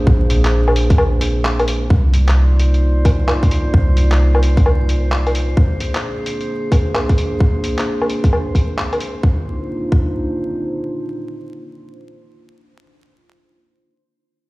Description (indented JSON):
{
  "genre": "future garage",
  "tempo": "131 BPM",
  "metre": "4/4",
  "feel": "swing 64% on 16ths",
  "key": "C minor",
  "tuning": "A4 = 440 Hz",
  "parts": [
    { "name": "dark analog pad", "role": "sustained chords", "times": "0.0-12.8 s", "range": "Bb3 to D5", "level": "-23 LUFS", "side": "right 1 dB", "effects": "chorus, vintage 12-bit sampler grit, sidechain pumping" },
    { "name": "soft 808-style bass", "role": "bass", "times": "0.0-5.6 s", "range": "Bb1 to C2", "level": "-14 LUFS", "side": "equal", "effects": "sidechain pumping" },
    { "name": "electronic kick drum", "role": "drums", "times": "0.1-10.1 s", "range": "none", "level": "-15 LUFS", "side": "equal", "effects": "studio ambience" },
    { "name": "lo-fi sampler-style drum kit", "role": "drums", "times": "0.3-9.1 s", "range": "handclaps, hi-hat, woodblock", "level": "-22 LUFS", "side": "left 1 dB", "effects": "studio ambience" },
    { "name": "drifting glass-harmonics texture", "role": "texture", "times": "2.2-9.2 s", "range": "C5", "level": "-32 LUFS", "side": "left 1 dB", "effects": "chorus, built-in reverb" }
  ],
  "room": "little or no reverb",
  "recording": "played on a big sound system in a bare room, large studio reverb, vinyl crackle",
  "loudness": "-14 LUFS",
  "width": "side -21 dB against mid",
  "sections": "0.0-1.9 A section; 1.9-9.2 B section; 9.2-12.9 C section",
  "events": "break 1.0-1.9",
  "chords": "0.0 Bb9; 1.9 Cm11; 5.6 Bb9; 9.2 Cm11"
}